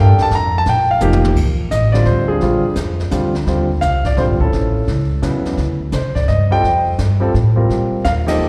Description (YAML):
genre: jazz piano trio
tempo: 171 BPM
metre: 3/4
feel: swing 66% on 8ths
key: Bb major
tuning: A4 = 440 Hz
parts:
  - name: warm grand piano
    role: melody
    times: 0.0-8.5 s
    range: C#3 to Bb5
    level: -19 LUFS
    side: equal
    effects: slapback echo
  - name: upright bass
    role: bass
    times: 0.0-8.5 s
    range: Eb1 to Bb2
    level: -19 LUFS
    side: equal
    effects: none
  - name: jazz brush drum kit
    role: drums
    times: 0.2-8.5 s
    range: brushed snare drum, crash cymbal, hi-hat, kick drum, ride cymbal, snare drum, toms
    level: -25 LUFS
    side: equal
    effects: slapback echo
room: light reverb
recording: live gig heard through the venue's PA, recital hall reverb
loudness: -16 LUFS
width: mono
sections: 0.0-1.4 A section; 1.4-8.5 B section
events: grand piano solo 0.0-1.4; drum fill 1.0-1.4; band accent 8.2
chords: 0.0 Bbmaj7; 1.4 Bbmaj9; 2.4 Bb7; 3.5 Eb69; 4.5 A; 5.6 D7(no3); 6.6 F7; 7.7 Bbmaj7sus2